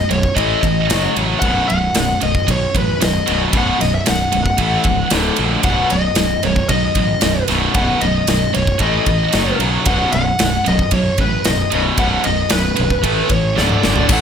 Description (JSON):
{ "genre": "hard rock", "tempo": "114 BPM", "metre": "4/4", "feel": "straight", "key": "B mixolydian", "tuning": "A4 = 436 Hz", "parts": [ { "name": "bluesy overdriven lead guitar", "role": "melody", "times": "0.0-14.2 s", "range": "B4 to F#5", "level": "-19 LUFS", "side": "left 2 dB", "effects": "distortion, slapback echo" }, { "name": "cranked stack guitar", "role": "riff", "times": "0.0-14.2 s", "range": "B1 to A3", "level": "-23 LUFS", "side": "left 11 dB", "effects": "overdrive" }, { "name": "heavy high-gain guitar", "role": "riff", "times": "0.0-14.2 s", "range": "B1 to A3", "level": "-20 LUFS", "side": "right 8 dB", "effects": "distortion" }, { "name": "fuzz fingered electric bass", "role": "bass", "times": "0.1-14.2 s", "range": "B0 to B1", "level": "-21 LUFS", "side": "equal", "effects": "overdrive" }, { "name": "big rock drum kit", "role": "drums", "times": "0.1-14.2 s", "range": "crash cymbal, kick drum, ride cymbal, snare drum, toms", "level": "-20 LUFS", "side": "equal", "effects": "none" } ], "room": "light reverb", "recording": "none", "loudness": "-14 LUFS", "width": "side -7 dB against mid", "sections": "0.0-14.1 A section", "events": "drum fill 13.6-14.1", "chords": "0.4 A5; 0.9 F#5; 1.4 B5; 4.6 A5; 5.1 D5; 5.6 B; 8.8 A5; 9.3 F#5; 9.9 B5; 13.0 A5; 13.6 D5", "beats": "0.36 0.89 | 1.42 1.95 2.47 3.00 | 3.53 4.05 4.58 5.11 | 5.64 6.17 6.69 7.22 | 7.75 8.28 8.80 9.33 | 9.86 10.38 10.91 11.44 | 11.97 12.50 13.03 13.55 | 14.08" }